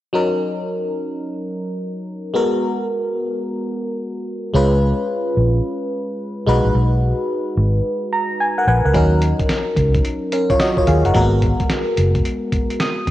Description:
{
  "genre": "R&B, new jack swing",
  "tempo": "109 BPM",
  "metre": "4/4",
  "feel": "swing 64% on 16ths",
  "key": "Eb minor",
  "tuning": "A4 = 437 Hz",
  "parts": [
    { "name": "FM electric piano", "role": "accompaniment", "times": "0.1-13.1 s", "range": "Gb3 to Eb6", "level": "-19 LUFS", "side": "equal", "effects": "chorus, phaser, cassette tape" },
    { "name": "vintage muted fingered electric bass", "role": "bass", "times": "4.5-13.1 s", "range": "Gb1 to Eb2", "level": "-16 LUFS", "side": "equal", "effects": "none" },
    { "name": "dusty soul sampler-style drum kit", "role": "drums", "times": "8.9-13.1 s", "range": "hi-hat, kick drum, snare drum", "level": "-21 LUFS", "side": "equal", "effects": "cassette tape" }
  ],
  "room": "moderate lush hall reverb, RT60 1.9 s, digital ambience",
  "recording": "home recording on cassette",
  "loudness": "-16 LUFS",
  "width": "side -14 dB against mid",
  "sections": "0.1-8.9 A section; 8.9-13.1 B section",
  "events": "FM electric piano fill 7.8-8.9, 12.5-13.1",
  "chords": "0.1 Ebm7; 2.3 Abm9; 4.5 Db7; 6.5 B6; 8.9 Ebm7; 11.1 Abm9",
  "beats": "| 0.14 0.69 1.24 1.79 | 2.34 2.89 3.44 3.99 | 4.54 5.09 5.64 6.19 | 6.74 7.29 7.84 8.39 | 8.94 9.49 10.04 10.60 | 11.15 11.70 12.25 12.80"
}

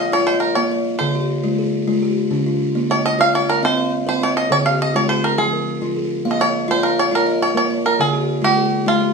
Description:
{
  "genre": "southern african traditional",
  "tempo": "137 BPM (dotted quarters)",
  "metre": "12/8",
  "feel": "straight",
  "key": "Bb equiheptatonic",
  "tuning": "A4 = 440 Hz",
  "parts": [
    { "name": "bluegrass banjo", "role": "melody", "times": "0.0-9.1 s", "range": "F4 to F5", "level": "-18 LUFS", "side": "right 2 dB", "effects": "plate reverb" },
    { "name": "buzzing kalimba", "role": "arpeggios", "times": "0.0-9.1 s", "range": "Db3+43c to F5", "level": "-18 LUFS", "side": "left 1 dB", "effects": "none" }
  ],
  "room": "wet studio ambience, RT60 0.5 s",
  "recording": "studio reverb",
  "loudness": "-16 LUFS",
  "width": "side -4 dB against mid",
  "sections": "0.0-6.2 A section; 6.2-9.1 B section",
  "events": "none",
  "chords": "0.0 Bbm; 1.0 Db; 2.8 Bbm; 3.6 Cm; 4.5 Db; 5.4 Fm; 6.2 Bbm; 8.0 Db",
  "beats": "0.13 0.56 | 1.00 1.44 1.88 2.31 | 2.75 3.19 3.63 4.06 | 4.50 4.94 5.37 5.81 | 6.25 6.68 7.12 7.55 | 7.99 8.42 8.86"
}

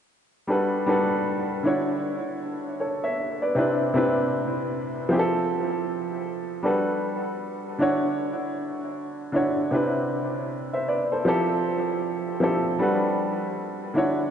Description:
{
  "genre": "hip hop",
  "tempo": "78 BPM",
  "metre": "4/4",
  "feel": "swing 61% on 16ths",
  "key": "G major",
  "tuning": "A4 = 440 Hz",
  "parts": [
    { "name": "warm upright piano", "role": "solo", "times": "0.5-14.3 s", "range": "C3 to E5", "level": "-23 LUFS", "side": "equal", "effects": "low-pass filter, diffuse ambient delay" }
  ],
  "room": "wet plate reverb, RT60 3.5 s",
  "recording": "dreamy mix soaked in reverb, cassette tape, nothing above 10.8 kHz",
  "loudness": "-23 LUFS",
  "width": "side -8 dB against mid",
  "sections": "0.5-6.6 A section; 6.6-14.3 B section",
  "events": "none",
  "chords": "0.5 Gmaj9; 1.6 Dmaj9; 3.6 Cmaj9; 5.1 Fmaj9; 6.6 Gmaj9; 7.8 Dmaj9; 9.7 Cmaj9; 11.2 Fmaj9; 12.8 Gmaj9",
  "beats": "| 0.48 1.25 2.02 2.79 | 3.56 4.33 5.09 5.86 | 6.63 7.40 8.17 8.94 | 9.71 10.48 11.25 12.02 | 12.79 13.56"
}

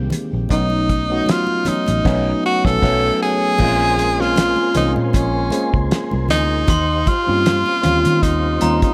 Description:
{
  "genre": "lush 1970s-style soul",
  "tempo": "78 BPM",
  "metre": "4/4",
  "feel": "swing 54% on 16ths",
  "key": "Bb minor",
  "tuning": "A4 = 440 Hz",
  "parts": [
    { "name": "tine electric piano", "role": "accompaniment", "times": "0.0-8.9 s", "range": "Eb3 to C5", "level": "-23 LUFS", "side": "equal", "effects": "none" },
    { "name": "vintage muted fingered electric bass", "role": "bass", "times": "0.0-8.8 s", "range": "A1 to Eb3", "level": "-24 LUFS", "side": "equal", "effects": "none" },
    { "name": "cloth-damped thuddy drum kit", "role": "drums", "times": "0.1-8.9 s", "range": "crash cymbal, hi-hat, kick drum, snare drum", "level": "-23 LUFS", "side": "equal", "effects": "none" },
    { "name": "congas", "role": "percussion", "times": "0.1-8.8 s", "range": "none", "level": "-30 LUFS", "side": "equal", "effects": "none" },
    { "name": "clear tenor saxophone", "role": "melody", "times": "0.5-8.9 s", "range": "Db4 to A4", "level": "-21 LUFS", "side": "equal", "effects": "tape echo" },
    { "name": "mellow tonewheel organ", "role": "sustained chords", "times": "3.6-8.9 s", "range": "G4 to C6", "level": "-33 LUFS", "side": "equal", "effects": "chorus vibrato, lush chorus" },
    { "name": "glockenspiel with brass mallets", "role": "texture", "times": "3.6-8.9 s", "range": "Ab5 to C6", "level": "-31 LUFS", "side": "equal", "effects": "none" }
  ],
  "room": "light reverb, small room ambience",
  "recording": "none",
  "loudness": "-17 LUFS",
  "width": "mono",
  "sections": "0.0-3.6 A section; 3.6-8.9 B section",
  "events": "band accent 2.1-3.6",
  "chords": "0.0 Abmaj7; 0.5 B9; 3.6 Bbm9; 6.7 Eb13",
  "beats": "| 0.51 1.28 2.05 2.82 | 3.60 4.37 5.14 5.91 | 6.68 7.46 8.23"
}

